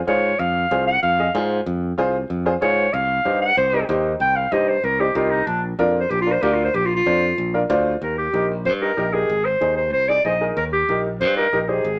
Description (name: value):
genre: latin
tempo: 189 BPM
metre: 4/4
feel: straight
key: Eb major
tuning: A4 = 443 Hz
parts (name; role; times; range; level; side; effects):
- warm clarinet; melody; 0.1-12.0 s; D4 to G5; -22 LUFS; equal; none
- warm upright piano; accompaniment; 0.1-11.8 s; D4 to Eb5; -24 LUFS; equal; none
- modern bright fingered electric bass; bass; 0.1-12.0 s; Ab1 to Ab2; -28 LUFS; equal; none
room: light reverb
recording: none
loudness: -20 LUFS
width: mono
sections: 0.0-8.0 A section; 8.0-12.0 B section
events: clarinet solo 0.0-8.0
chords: 0.0 Fm; 2.9 Cm; 5.5 Bb; 8.0 Eb; 9.3 Ab; 10.6 Eb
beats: 0.08 | 0.40 0.71 1.03 1.35 | 1.67 1.98 2.30 2.62 | 2.94 3.25 3.57 3.89 | 4.21 4.52 4.84 5.16 | 5.48 5.79 6.11 6.43 | 6.75 7.07 7.38 7.70 | 8.02 8.34 8.66 8.97 | 9.29 9.61 9.93 10.25 | 10.57 10.89 11.21 11.53 | 11.85